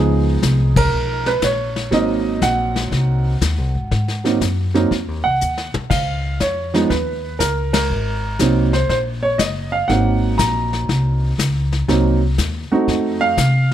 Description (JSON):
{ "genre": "jazz piano trio", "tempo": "120 BPM", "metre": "4/4", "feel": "swing 68% on 8ths", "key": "Ab mixolydian", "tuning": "A4 = 442 Hz", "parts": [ { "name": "warm grand piano", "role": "melody", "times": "0.0-13.7 s", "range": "F3 to Bb5", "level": "-19 LUFS", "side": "right 3 dB", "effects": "none" }, { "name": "upright bass", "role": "bass", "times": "0.0-13.7 s", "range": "Gb1 to C3", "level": "-19 LUFS", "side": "left 1 dB", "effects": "none" }, { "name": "vintage brush drum kit", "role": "drums", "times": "0.4-13.7 s", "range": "brushed snare drum, crash cymbal, hi-hat, kick drum, ride cymbal, snare drum, toms", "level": "-23 LUFS", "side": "left 4 dB", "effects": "none" } ], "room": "little or no reverb", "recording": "none", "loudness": "-16 LUFS", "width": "side -11 dB against mid", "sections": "0.0-13.7 A section", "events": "band accent 0.7, 7.7; drum fill 5.4-5.9", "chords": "0.0 Db9; 1.9 Ab9; 5.9 Db9; 7.9 Ab9; 11.9 Cm7b5; 12.9 F7b9" }